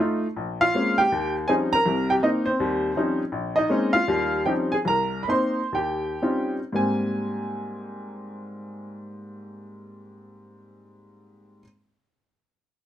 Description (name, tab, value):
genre	solo jazz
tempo	110-166 BPM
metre	4/4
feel	swing 66% on 8ths, rubato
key	Ab major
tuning	A4 = 438 Hz
part	clear upright piano	solo	0.0-11.6 s	Bb1 to C6	-22 LUFS	equal	none
room	light reverb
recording	close, detailed microphones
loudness	-21 LUFS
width	side -11 dB against mid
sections	0.4-6.7 A section; 6.7-11.0 B section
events	slowing down 3.3-6.7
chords	0.4 Bbm9; 1.1 Eb13; 1.9 Cm7; 2.6 Eb13; 3.3 Bbm9; 4.1 Eb13; 4.9 Cm7; 5.7 Eb13; 6.7 Abmaj9